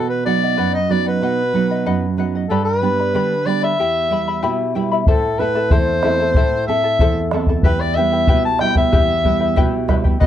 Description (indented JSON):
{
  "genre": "andean folk, Andean ensemble",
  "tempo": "93 BPM",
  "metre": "2/4",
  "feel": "straight",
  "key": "E minor",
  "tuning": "A4 = 440 Hz",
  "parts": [
    { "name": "warm soprano saxophone", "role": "melody", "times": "0.0-10.3 s", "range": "A4 to A5", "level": "-19 LUFS", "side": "left 2 dB", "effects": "none" },
    { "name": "charango", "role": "accompaniment", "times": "0.0-10.3 s", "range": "E4 to B5", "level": "-23 LUFS", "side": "left 7 dB", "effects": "none" },
    { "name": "nylon-string guitar", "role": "accompaniment", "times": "0.0-10.3 s", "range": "E2 to E4", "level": "-20 LUFS", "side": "right 6 dB", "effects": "none" },
    { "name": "bombo", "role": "percussion", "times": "5.1-10.3 s", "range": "none", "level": "-17 LUFS", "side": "equal", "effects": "none" }
  ],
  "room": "little or no reverb",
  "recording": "dry, close 1970s-style studio recording",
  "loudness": "-15 LUFS",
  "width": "side -10 dB against mid",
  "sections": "0.0-5.1 A section; 5.1-10.3 A section",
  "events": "none",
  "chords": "0.0 B; 2.5 G; 3.8 Em; 5.1 Am; 7.6 Em"
}